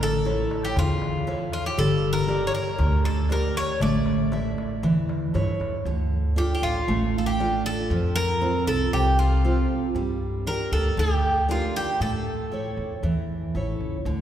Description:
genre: greek folk, Greek bouzouki band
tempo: 117 BPM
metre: 4/4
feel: straight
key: D minor from 5.9 s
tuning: A4 = 440 Hz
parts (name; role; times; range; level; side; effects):
- Greek bouzouki; melody; 0.0-13.5 s; F4 to D5; -27 LUFS; equal; none
- picked steel-string acoustic guitar; accompaniment; 0.0-14.2 s; C3 to E5; -28 LUFS; right 2 dB; none
- upright bass; bass; 0.0-14.2 s; G1 to A2; -26 LUFS; equal; none
- darbuka; percussion; 0.0-5.8 s; none; -29 LUFS; left 4 dB; none
room: wet church reverb, RT60 2.9 s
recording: recorded in a church or concert hall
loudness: -22 LUFS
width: side -10 dB against mid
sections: 0.0-5.9 A section; 5.9-14.2 B section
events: none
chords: 0.0 A; 1.8 Gm; 3.8 A; 5.9 Dm; 7.9 F; 9.9 Gm; 12.0 A

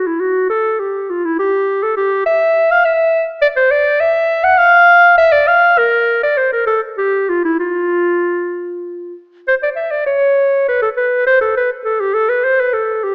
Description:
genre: classical, baroque-style fantasia for unaccompanied clarinet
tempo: 68 BPM (dotted quarters)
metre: 6/8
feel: rubato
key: unclear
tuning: A4 = 440 Hz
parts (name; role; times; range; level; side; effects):
- mellow clarinet; solo; 0.0-13.1 s; E4 to F#5; -14 LUFS; equal; none
room: wet scoring stage reverb, RT60 1.5 s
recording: worn, warbling old tape, cassette tape, warbly pitch drift, small speaker sound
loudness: -14 LUFS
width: mono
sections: 0.0-9.5 A section; 9.5-13.1 A section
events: none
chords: none

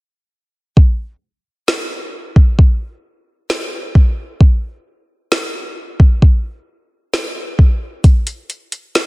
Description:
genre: hip hop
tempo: 132 BPM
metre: 4/4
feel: half-time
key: none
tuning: none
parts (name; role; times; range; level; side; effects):
- smooth R&B drum kit; drums; 0.8-9.1 s; hi-hat, kick drum, snare drum; -11 LUFS; equal; none
room: little or no reverb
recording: dense, heavily limited modern master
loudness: -12 LUFS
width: side -23 dB against mid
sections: 0.8-9.1 A section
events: hi-hats muted 0.8-8.0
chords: none

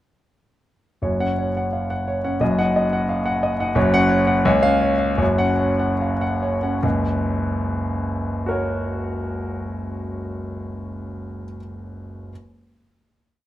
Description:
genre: classical, virtuoso piano study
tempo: 70-90 BPM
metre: 2/4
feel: rubato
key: F# major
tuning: A4 = 440 Hz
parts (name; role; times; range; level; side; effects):
- clear grand piano; solo; 1.0-12.3 s; F#1 to F#5; -20 LUFS; equal; none
room: light reverb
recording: none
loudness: -19 LUFS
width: side -14 dB against mid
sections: 1.0-6.8 A section; 6.8-10.1 final chord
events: slowing down 3.1-6.8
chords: 1.0 F#5; 2.4 D#madd9/F#; 3.8 F#5; 4.5 C#; 5.2 F#5; 6.8 F#

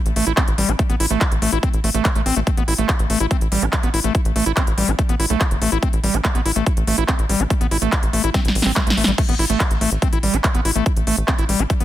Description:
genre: psychedelic trance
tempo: 143 BPM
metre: 4/4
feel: straight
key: A minor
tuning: A4 = 440 Hz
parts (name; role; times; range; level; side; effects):
- tight sequencer bass; bass; 0.1-11.8 s; G1 to B1; -21 LUFS; equal; none
- big-room dance drum kit; drums; 0.1-11.8 s; crash cymbal, handclaps, hi-hat, snare drum; -22 LUFS; equal; overdrive
- overdriven acid bass; riff; 0.2-11.8 s; G3 to E4; -22 LUFS; moving between left 7 dB and right 6 dB; auto-pan, vintage 12-bit sampler grit, sidechain pumping, ping-pong delay
- electronic kick drum; drums; 0.4-11.8 s; none; -20 LUFS; equal; overdrive
room: little or no reverb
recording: dense, heavily limited modern master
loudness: -16 LUFS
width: side -13 dB against mid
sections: 0.0-11.8 A section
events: drum fill 8.3-9.2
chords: 0.0 A5

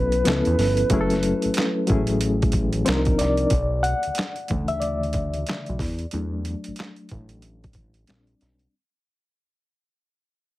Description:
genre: R&B, neo-soul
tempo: 92 BPM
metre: 4/4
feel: swing 63% on 16ths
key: B dorian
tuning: A4 = 440 Hz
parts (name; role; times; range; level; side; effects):
- gliding portamento lead; melody; 0.0-2.8 s; B4; -26 LUFS; right 1 dB; chorus
- bright reed electric piano; accompaniment; 0.0-8.7 s; C#3 to F#5; -24 LUFS; left 2 dB; fast tremolo
- fat analog bass; bass; 0.0-8.7 s; F#1 to E2; -26 LUFS; equal; none
- boom bap sampler-style drum kit; drums; 0.1-8.7 s; handclaps, hi-hat, kick drum, snare drum; -26 LUFS; equal; overdrive
room: light reverb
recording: heavily compressed radio sound, multiband compression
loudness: -20 LUFS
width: side -17 dB against mid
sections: 0.0-3.5 A section; 3.5-8.7 B section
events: fade-out 3.5-8.7; reed electric piano solo 3.5-8.7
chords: 0.2 C#7alt; 0.9 F#m7; 2.9 Cm11; 3.5 Bm11; 5.8 E9sus4; 8.1 A#69

